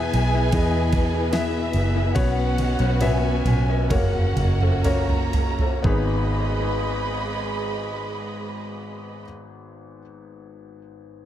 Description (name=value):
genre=pop ballad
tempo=58-77 BPM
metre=4/4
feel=straight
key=G# minor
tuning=A4 = 440 Hz
part: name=warm studio violin section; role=second line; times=0.0-9.2 s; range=E5 to B5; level=-31 LUFS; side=right 2 dB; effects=none
part: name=felt-muted upright piano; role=accompaniment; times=0.0-11.3 s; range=G#1 to E5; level=-26 LUFS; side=left 4 dB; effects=analog delay
part: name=clear studio string section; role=sustained chords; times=0.0-9.2 s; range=E3 to D#5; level=-31 LUFS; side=right 5 dB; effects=none
part: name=vintage muted fingered electric bass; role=bass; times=0.0-9.2 s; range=F#1 to E2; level=-23 LUFS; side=right 1 dB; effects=none
part: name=smooth R&B drum kit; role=drums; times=0.1-6.1 s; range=kick drum, ride cymbal, snare drum, toms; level=-25 LUFS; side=right 1 dB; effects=none
room=studio reverb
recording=echo-heavy mix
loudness=-20 LUFS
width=side -11 dB against mid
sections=0.0-5.8 A section; 5.8-10.0 B section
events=slowing down 0.0-5.8; drum fill 2.2-5.8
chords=0.0 E; 2.2 Bsus2; 3.9 F#; 5.8 G#m